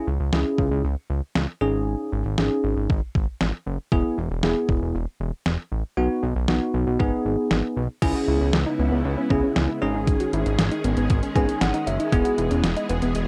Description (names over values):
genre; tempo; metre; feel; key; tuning
synth-pop; 117 BPM; 4/4; straight; C# minor; A4 = 440 Hz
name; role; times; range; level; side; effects
bell-like tine electric piano; accompaniment; 0.0-12.6 s; B3 to G#5; -26 LUFS; equal; analog chorus
fat analog bass; bass; 0.1-13.3 s; E1 to C#2; -27 LUFS; equal; none
detuned 8-bit digital drum machine; drums; 0.3-13.3 s; crash cymbal, hi-hat, kick drum, snare drum; -26 LUFS; equal; overdrive
string machine, violas; sustained chords; 8.0-13.3 s; C#3 to G#4; -32 LUFS; equal; ensemble chorus
warbly dusty pluck; arpeggios; 8.2-13.2 s; B3 to F#4; -30 LUFS; equal; chorus, analog delay
room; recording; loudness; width
light reverb; cassette tape; -23 LUFS; mono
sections
0.0-8.0 A section; 8.0-13.3 B section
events
tine electric piano fill 11.1-12.1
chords
0.0 C#m; 1.6 G#sus4; 3.9 E; 6.0 B; 7.0 G#m; 8.0 C#m7; 9.8 G#sus4; 12.1 E